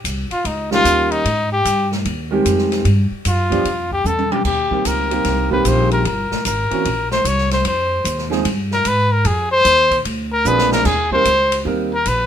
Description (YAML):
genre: jazz, small-group swing and bop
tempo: 150 BPM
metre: 4/4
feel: swing 66% on 8ths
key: unclear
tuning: A4 = 443 Hz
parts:
  - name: upright bass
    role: bass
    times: 0.0-12.3 s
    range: G1 to Ab2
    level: -21 LUFS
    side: equal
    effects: none
  - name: open jazz drum kit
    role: drums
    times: 0.0-12.2 s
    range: crash cymbal, hi-hat, kick drum, ride cymbal, snare drum, toms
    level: -25 LUFS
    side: left 1 dB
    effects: none
  - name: warm trumpet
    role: melody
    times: 0.3-12.3 s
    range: Eb4 to Db5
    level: -17 LUFS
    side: left 1 dB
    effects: none
  - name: clear upright piano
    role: accompaniment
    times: 0.7-11.9 s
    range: Eb3 to Bb4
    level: -20 LUFS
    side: right 3 dB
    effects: none
room: light reverb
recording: minimal, uncompressed stereo recording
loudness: -15 LUFS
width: side -9 dB against mid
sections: 0.0-10.9 A section; 10.9-12.3 A section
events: trumpet solo 0.0-12.3; drum fill 4.1-4.5, 10.5-10.9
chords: 0.0 Eb7; 1.2 Abmaj7; 2.9 G7(no3); 4.5 Cm7; 6.1 Gdim; 6.9 Bbmadd9; 7.7 Fm7; 9.3 F5; 10.1 Bb9; 10.9 Eb6